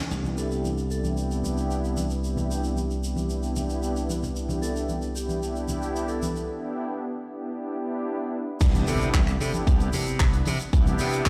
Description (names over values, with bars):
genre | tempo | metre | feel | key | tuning
nu-disco, nu disco | 113 BPM | 4/4 | straight | C major | A4 = 440 Hz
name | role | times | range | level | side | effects
warm analog pad | accompaniment | 0.1-11.3 s | B3 to B4 | -33 LUFS | equal | chorus, sidechain pumping, digital delay
glassy slap bass | bass | 0.1-11.3 s | C2 to C3 | -31 LUFS | equal | none
tight funk drum kit | drums | 0.1-11.3 s | crash cymbal, finger snaps, handclaps, hi-hat, shaker | -37 LUFS | equal | none
tube shaker and congas | percussion | 0.1-11.3 s | none | -36 LUFS | equal | none
vibraphone with medium mallets | melody | 0.4-11.2 s | G4 to A4 | -39 LUFS | equal | digital delay
electronic kick drum | drums | 8.6-11.3 s | none | -23 LUFS | equal | none
impact | sound effects | 8.7-10.7 s | none | -35 LUFS | equal | none
room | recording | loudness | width
light reverb, studio reverb | played on a big sound system in a bare room, stone room reverb | -27 LUFS | mono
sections
0.1-8.6 A section; 8.6-11.3 B section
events
band accent 0.0; break 6.5-8.6; drop 8.6-11.3; impact 8.6-10.7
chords
0.1 Cmaj9